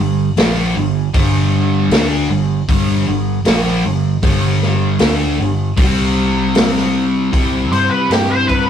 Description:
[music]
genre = blues rock power trio and southern rock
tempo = 78 BPM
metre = 4/4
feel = straight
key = unclear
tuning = A4 = 440 Hz
[part]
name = sludgy distorted guitar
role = riff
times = 0.0-8.7 s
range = G2 to G4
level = -16 LUFS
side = equal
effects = overdrive
[part]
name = vintage muted fingered electric bass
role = bass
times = 0.0-8.7 s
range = G1 to G2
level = -20 LUFS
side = equal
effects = none
[part]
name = vintage drum kit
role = drums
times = 0.4-8.7 s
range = hi-hat, kick drum, snare drum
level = -18 LUFS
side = equal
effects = none
[part]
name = octave-fuzz lead guitar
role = melody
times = 7.7-8.7 s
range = G4 to C5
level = -15 LUFS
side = left 1 dB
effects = wah, distortion
[sound]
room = moderate small room reverb, RT60 0.5 s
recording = rough rehearsal-room recording, warm saturation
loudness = -13 LUFS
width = side -8 dB against mid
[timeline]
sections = 0.0-7.3 A section; 7.3-8.7 B section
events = none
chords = 0.0 G5; 5.8 C5; 7.3 C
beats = 0.38 | 1.15 1.92 2.69 3.46 | 4.23 5.00 5.77 6.55 | 7.32 8.10

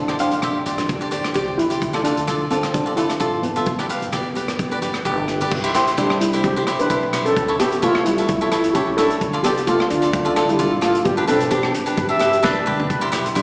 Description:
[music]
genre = calypso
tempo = 130 BPM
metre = 4/4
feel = swing 54% on 16ths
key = C major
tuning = A4 = 441 Hz
[part]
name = steel pan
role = melody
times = 0.0-13.4 s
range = G3 to B4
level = -23 LUFS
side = equal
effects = slapback echo
[part]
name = upright bass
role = bass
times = 0.0-13.4 s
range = E1 to E2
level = -34 LUFS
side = equal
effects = none
[part]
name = cavaquinho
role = accompaniment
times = 0.1-13.4 s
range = D4 to F5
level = -25 LUFS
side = equal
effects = slapback echo
[part]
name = vintage drum kit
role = drums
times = 0.1-13.4 s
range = crash cymbal, hi-hat, kick drum, rim click, snare drum, toms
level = -28 LUFS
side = equal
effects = none
[part]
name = congas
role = percussion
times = 0.1-5.5, 13.1-13.2 s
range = none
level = -37 LUFS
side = equal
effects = slapback echo
[part]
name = mellow trumpet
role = second line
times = 12.0-13.2 s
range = B4 to E5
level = -23 LUFS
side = equal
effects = slapback echo
[sound]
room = moderate digital room reverb, RT60 1.4 s, studio reverb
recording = live gig heard through the venue's PA, recital hall reverb, small speaker sound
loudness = -20 LUFS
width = mono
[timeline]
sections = 0.0-5.5 A section; 5.5-13.4 B section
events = drum fill 12.4-12.9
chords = 0.0 Gsus4; 1.8 Dmadd9; 3.7 G; 5.5 C; 7.4 A; 9.2 Dm; 11.1 G; 12.9 Cmaj7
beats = 0.43 0.89 1.35 | 1.82 2.28 2.74 3.21 | 3.67 4.13 4.59 5.05 | 5.52 5.98 6.44 6.90 | 7.37 7.83 8.29 8.75 | 9.21 9.67 10.13 10.60 | 11.06 11.52 11.98 12.44 | 12.90 13.36

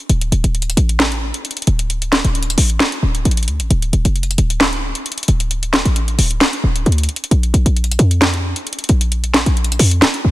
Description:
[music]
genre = hip hop, trap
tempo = 133 BPM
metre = 4/4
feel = half-time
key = D minor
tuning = A4 = 440 Hz
[part]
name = short 808-style bass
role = bass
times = 0.1-10.3 s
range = D1 to F2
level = -15 LUFS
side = equal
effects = none
[part]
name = trap drum kit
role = drums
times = 0.1-10.2 s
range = handclaps, hi-hat, snare drum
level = -17 LUFS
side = equal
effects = none
[sound]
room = digital ambience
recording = dense, heavily limited modern master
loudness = -14 LUFS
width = side -16 dB against mid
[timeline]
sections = 0.1-10.3 A section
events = none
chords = none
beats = | 0.10 0.55 1.00 1.45 | 1.90 2.35 2.80 3.25 | 3.70 4.16 4.61 5.06 | 5.51 5.96 6.41 6.86 | 7.31 7.76 8.22 8.67 | 9.12 9.57 10.02

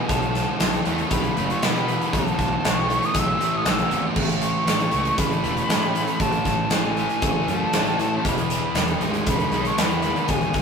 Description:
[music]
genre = rock, shoegaze and dream pop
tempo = 117 BPM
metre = 4/4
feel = straight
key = B mixolydian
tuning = A4 = 438 Hz
[part]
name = hollow concert flute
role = melody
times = 0.0-10.6 s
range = G#5 to E6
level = -26 LUFS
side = equal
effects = none
[part]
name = fuzz guitar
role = riff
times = 0.0-10.6 s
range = E2 to C#4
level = -24 LUFS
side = equal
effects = distortion
[part]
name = fuzz picked electric bass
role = bass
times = 0.1-10.6 s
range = E1 to B2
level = -29 LUFS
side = equal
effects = overdrive
[part]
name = huge arena drum kit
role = drums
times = 0.1-10.6 s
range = crash cymbal, hi-hat, kick drum, snare drum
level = -24 LUFS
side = equal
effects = none
[sound]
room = wet stone room reverb, RT60 1.0 s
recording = rough rehearsal-room recording, warm saturation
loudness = -19 LUFS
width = side -6 dB against mid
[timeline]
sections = 0.0-10.6 A section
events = none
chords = 0.0 B7sus4; 4.2 A; 8.2 Emaj7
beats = | 0.08 0.59 1.10 1.61 | 2.12 2.63 3.14 3.65 | 4.16 4.67 5.18 5.69 | 6.20 6.71 7.23 7.74 | 8.25 8.76 9.27 9.78 | 10.29

